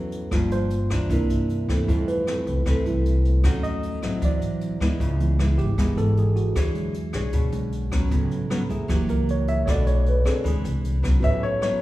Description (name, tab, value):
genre	bossa nova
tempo	154 BPM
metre	4/4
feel	straight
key	A major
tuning	A4 = 440 Hz
part	nylon-string guitar	accompaniment	0.0-11.8 s	F2 to C#5	-28 LUFS	left 2 dB	none
part	tine electric piano	accompaniment	0.0-11.8 s	C#3 to E5	-27 LUFS	right 2 dB	overdrive
part	upright bass	bass	0.0-11.8 s	F#1 to G2	-24 LUFS	equal	none
part	jazz brush drum kit	drums	0.1-11.7 s	hi-hat, kick drum, rim click	-26 LUFS	equal	none
part	warm concert grand piano	melody	11.2-11.8 s	C#5 to E5	-23 LUFS	left 2 dB	none
room	wet recital hall reverb, RT60 1.4 s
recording	recorded in a church or concert hall, small room ambience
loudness	-20 LUFS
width	side -16 dB against mid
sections	0.0-11.2 A section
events	tine electric piano solo 0.0-11.2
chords	0.3 Gm7; 1.1 C9; 1.9 Fmaj7; 3.4 D#m7b5; 4.2 D9; 5.0 C#m7; 6.6 E13; 8.1 A69; 8.9 F#7; 9.7 Bm7; 10.4 E7b13; 11.2 A69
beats	| 0.32 0.71 1.10 1.49 | 1.88 2.27 2.66 3.05 | 3.44 3.83 4.22 4.61 | 5.00 5.39 5.78 6.17 | 6.56 6.95 7.34 7.73 | 8.12 8.50 8.89 9.28 | 9.67 10.06 10.45 10.84 | 11.23 11.62